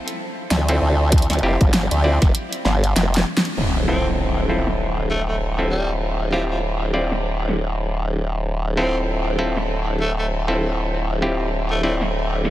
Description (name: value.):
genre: glitch hop.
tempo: 98 BPM.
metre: 4/4.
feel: swing 58% on 16ths.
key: D minor.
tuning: A4 = 440 Hz.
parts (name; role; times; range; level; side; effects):
pop drum kit; drums; 0.1-12.5 s; crash cymbal, hi-hat, snare drum; -24 LUFS; equal; low-pass filter on hats, low-pass filter on snare, low-pass filter on cymbals, low-pass filter on room.
formant-sweep wobble bass; bass; 0.5-12.5 s; D1 to D2; -21 LUFS; equal; chorus, overdrive.
clav; stabs; 0.7-12.0 s; C4 to D5; -25 LUFS; equal; sidechain pumping, low-pass filter, diffuse ambient delay.
electronic kick drum; drums; 1.1-2.3 s; none; -16 LUFS; equal; none.
impact; sound effects; 3.6-6.0 s; none; -26 LUFS; equal; none.
breathy tenor saxophone; melody; 3.9-11.9 s; F3 to C4; -28 LUFS; equal; diffuse ambient delay.
room: moderate huge ambient reverb, RT60 6.1 s.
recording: dreamy mix soaked in reverb.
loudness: -18 LUFS.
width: side -14 dB against mid.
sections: 0.0-3.6 A section; 3.6-12.5 B section.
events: break 2.3-3.6; drum fill 3.0-3.6; band accent 3.4-3.7; impact 3.6-6.0.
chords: 0.0 Dm7.